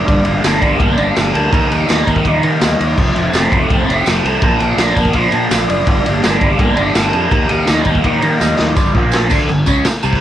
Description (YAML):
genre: garage rock duo or trio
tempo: 166 BPM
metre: 4/4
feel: straight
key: G minor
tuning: A4 = 440 Hz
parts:
  - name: biting overdriven guitar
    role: riff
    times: 0.0-10.2 s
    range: F2 to Eb4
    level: -14 LUFS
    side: right 1 dB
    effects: phaser, cassette tape
  - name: fuzz fingered electric bass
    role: bass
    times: 0.0-10.2 s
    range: F1 to Eb3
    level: -19 LUFS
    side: equal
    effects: overdrive
  - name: raw garage drum kit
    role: drums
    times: 0.1-10.2 s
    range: crash cymbal, kick drum, ride cymbal, snare drum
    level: -16 LUFS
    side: equal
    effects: cassette tape
  - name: tambourine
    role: percussion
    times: 0.4-10.2 s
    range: none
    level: -28 LUFS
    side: right 8 dB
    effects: none
room: light reverb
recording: home recording on cassette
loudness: -11 LUFS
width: side -11 dB against mid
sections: 0.0-8.8 A section; 8.8-10.2 B section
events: drum fill 8.4-8.8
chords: 0.1 Gm; 1.5 Eb; 3.0 F; 4.4 Bb; 5.9 Gm; 7.3 Eb; 8.8 G5; 8.9 Bb5; 9.3 G5